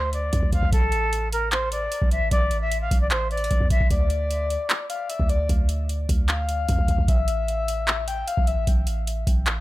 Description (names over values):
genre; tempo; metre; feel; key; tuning
hip hop, trap; 151 BPM; 4/4; half-time; D minor; A4 = 440 Hz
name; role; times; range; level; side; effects
silver concert flute; melody; 0.0-3.9 s; A4 to F5; -27 LUFS; left 1 dB; low-pass filter, tape echo
warm 808-style bass; bass; 0.0-9.6 s; A1 to F2; -25 LUFS; equal; none
booming analog drum machine; drums; 0.1-9.6 s; handclaps, hi-hat, kick drum; -22 LUFS; equal; none
breathy flute-like synth lead; second line; 3.9-8.7 s; D5 to G5; -28 LUFS; left 5 dB; chorus, tape echo
room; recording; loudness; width
little or no reverb; none; -20 LUFS; side -17 dB against mid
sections
0.0-9.6 A section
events
none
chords
0.0 Dm; 0.7 A5; 3.9 Dm; 7.1 A5